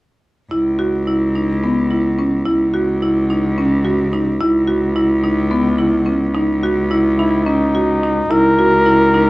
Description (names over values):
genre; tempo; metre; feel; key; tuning
contemporary instrumental, chamber music in an uneven meter; 216 BPM (eighths); 7/8; straight; C# dorian; A4 = 439 Hz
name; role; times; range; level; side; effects
marimba with medium mallets; arpeggios; 0.5-9.3 s; B3 to F#4; -15 LUFS; right 1 dB; none
bright cello; bass; 0.5-9.3 s; C#2; -19 LUFS; equal; none
warm flugelhorn; melody; 7.2-9.3 s; D#4 to A#4; -15 LUFS; left 1 dB; none
room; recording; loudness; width
light reverb; worn, warbling old tape, cassette tape, warbly pitch drift; -14 LUFS; side -19 dB against mid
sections
0.5-8.3 A section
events
none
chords
0.5 C#m; 2.5 F#5/C#; 4.4 C#m; 6.3 C#sus2